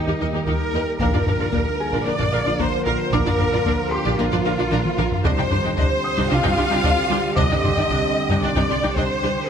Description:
cinematic, hybrid orchestral and electronic film score; 113 BPM; 4/4; straight; C minor; A4 = 444 Hz
warm symphonic violin section; second line; 0.0-9.5 s; Eb4 to F5; -28 LUFS; left 4 dB
analog drone; sustained chords; 0.0-9.5 s; D3 to C5; -32 LUFS; right 1 dB
mellow French horn section; sustained chords; 0.0-9.5 s; Bb3 to Bb4; -30 LUFS; left 4 dB
warm trombone section; sustained chords; 0.0-9.5 s; D3 to G3; -30 LUFS; right 4 dB
analog pluck; arpeggios; 0.0-9.3 s; C3 to Bb4; -30 LUFS; left 5 dB; chorus, tape echo
warm symphonic cello section; bass; 0.0-9.5 s; Eb4 to Eb5; -25 LUFS; right 2 dB
felt-muted upright piano; texture; 0.0-9.5 s; Ab4 to Eb6; -33 LUFS; left 2 dB; tape echo
warm symphonic violin section; melody; 0.1-9.3 s; G4 to C6; -32 LUFS; left 4 dB
rich symphonic viola section; accompaniment; 0.1-9.3 s; D4 to Bb4; -28 LUFS; right 1 dB
rich symphonic double bass section; bass; 0.1-9.3 s; Bb1 to Eb2; -26 LUFS; right 3 dB
taiko ensemble; drums; 0.1-9.5 s; -25 LUFS; left 1 dB
moderate scoring stage reverb, RT60 1.8 s; -18 LUFS; side -8 dB against mid
0.0-9.5 A section
drum fill 4.7-5.2
0.0 Eb; 1.0 Bb; 5.2 Cmadd9

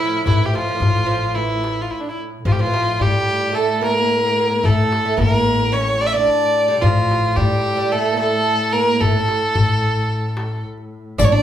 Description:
Arabic maqam ensemble; 110 BPM; 4/4; straight; A maqam hijaz; A4 = 439 Hz
rich violin; melody; 0.0-11.4 s; D4 to E5; -19 LUFS; equal
oud; second line; 0.0-11.4 s; E3 to D4; -23 LUFS; right 4 dB
clear double bass; drone; 0.0-11.2 s; A2; -28 LUFS; left 3 dB
upright bass; bass; 0.3-11.4 s; A1 to A2; -22 LUFS; equal
darbuka; percussion; 0.3-11.4 s; -20 LUFS; left 3 dB
riq; percussion; 11.2-11.3 s; -24 LUFS; left 4 dB
moderate large studio reverb, RT60 0.8 s; band playing live in one room; -16 LUFS; side -10 dB against mid
0.0-11.2 A section

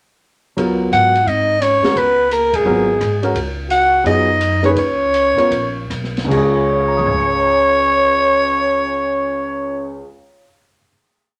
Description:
modal jazz; 146-173 BPM; 4/4; swing 65% on 8ths; Db mixolydian; A4 = 440 Hz
warm grand piano; accompaniment; 0.6-10.9 s; Db2 to Db7; -22 LUFS; equal
upright bass; bass; 0.6-10.0 s; Ab1 to Ab2; -27 LUFS; equal
open jazz drum kit; drums; 0.6-7.3 s; crash cymbal, hi-hat, kick drum, ride cymbal, rim click, snare drum, toms; -30 LUFS; equal
growling soprano saxophone; melody; 0.9-10.0 s; Ab4 to Gb5; -18 LUFS; equal
trombone with cup mute; second line; 0.9-10.0 s; Ab3 to Gb4; -24 LUFS; equal
moderate studio reverb, RT60 0.6 s; -16 LUFS; mono
0.6-6.3 A section; 6.3-9.6 final chord
band accent 2.5; slowing down 3.4-6.3
0.6 Db7sus4; 3.4 Gb/Db; 6.3 Db

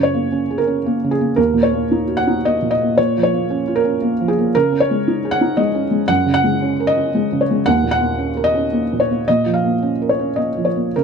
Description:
neoclassical minimalist piano; 113 BPM; 3/4; rubato; F# major; A4 = 440 Hz
felt-muted upright piano; solo; 0.0-11.0 s; D#2 to F#5; -15 LUFS; right 1 dB
light reverb; dark, warm production; -15 LUFS; side -6 dB against mid
0.0-11.0 A section
0.0 F#add9; 1.4 D#m7; 3.0 A#m; 4.5 C#sus2; 6.1 F#add9; 7.7 D#m7; 9.3 A#m

